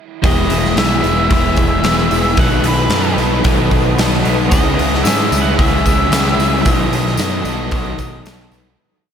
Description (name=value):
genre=rock, shoegaze and dream pop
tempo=112 BPM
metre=4/4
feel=straight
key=E major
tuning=A4 = 441 Hz
part: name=granular cloud pad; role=sustained chords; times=1.5-8.8 s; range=E4 to D#6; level=-26 LUFS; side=right 1 dB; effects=built-in reverb, ensemble chorus
part: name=crunchy overdriven guitar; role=riff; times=0.2-8.8 s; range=B2 to A4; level=-20 LUFS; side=right 7 dB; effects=reverse reverb
part: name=overdriven semi-hollow guitar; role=riff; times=0.2-8.8 s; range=B2 to A4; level=-19 LUFS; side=left 6 dB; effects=ensemble chorus
part: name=growling picked electric bass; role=bass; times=0.2-8.8 s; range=E1 to G#2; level=-19 LUFS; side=equal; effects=overdrive
part: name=huge arena drum kit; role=drums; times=0.2-8.7 s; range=hi-hat, kick drum, snare drum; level=-17 LUFS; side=equal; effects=none
part: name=octave-fuzz lead guitar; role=melody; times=0.3-8.2 s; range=B4 to F#5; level=-21 LUFS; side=equal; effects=distortion, diffuse ambient delay
part: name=tambourine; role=percussion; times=4.5-8.6 s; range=none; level=-29 LUFS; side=left 8 dB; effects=none
room=wet cathedral reverb, RT60 6.3 s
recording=dreamy mix soaked in reverb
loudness=-12 LUFS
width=side -8 dB against mid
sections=0.2-8.8 verse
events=fade-out 6.7-8.8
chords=0.2 Emaj7; 2.4 B7; 4.5 C#madd9; 6.7 B7